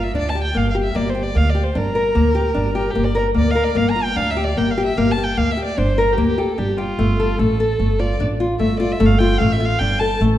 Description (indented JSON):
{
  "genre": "contemporary instrumental, chamber music in an uneven meter",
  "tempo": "149 BPM",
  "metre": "5/4",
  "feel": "straight",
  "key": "G dorian",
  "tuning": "A4 = 440 Hz",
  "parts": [
    { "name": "dark violin", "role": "melody", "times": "0.0-10.2 s", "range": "F4 to Bb5", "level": "-23 LUFS", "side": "right 1 dB", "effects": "none" },
    { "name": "nylon-string guitar", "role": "arpeggios", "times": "0.0-10.4 s", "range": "A3 to Bb4", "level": "-19 LUFS", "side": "left 2 dB", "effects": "none" },
    { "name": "upright bass", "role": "bass", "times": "0.0-10.4 s", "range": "G1 to D2", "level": "-20 LUFS", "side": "right 1 dB", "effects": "none" }
  ],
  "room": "wet recital hall reverb, RT60 1.5 s",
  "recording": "dark, warm production",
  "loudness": "-16 LUFS",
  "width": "side -12 dB against mid",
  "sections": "0.0-10.4 A section",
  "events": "none",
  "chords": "0.0 Gm7; 7.0 Dm/G (rootless)"
}